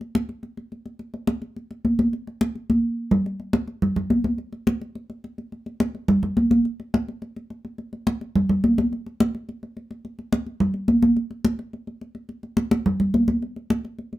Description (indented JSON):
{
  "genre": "jazz",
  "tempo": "212 BPM",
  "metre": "4/4",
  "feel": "straight",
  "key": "none",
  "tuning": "none",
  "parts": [
    { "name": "congas", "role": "percussion", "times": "0.0-14.2 s", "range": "none", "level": "-21 LUFS", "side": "equal", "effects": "none" }
  ],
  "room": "moderate small room ambience, RT60 0.5 s",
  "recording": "minimal, uncompressed stereo recording",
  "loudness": "-21 LUFS",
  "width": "side -15 dB against mid",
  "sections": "0.0-3.3 A section; 3.3-12.3 B section; 12.3-14.2 C section",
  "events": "drum fill 2.7-3.3",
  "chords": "none"
}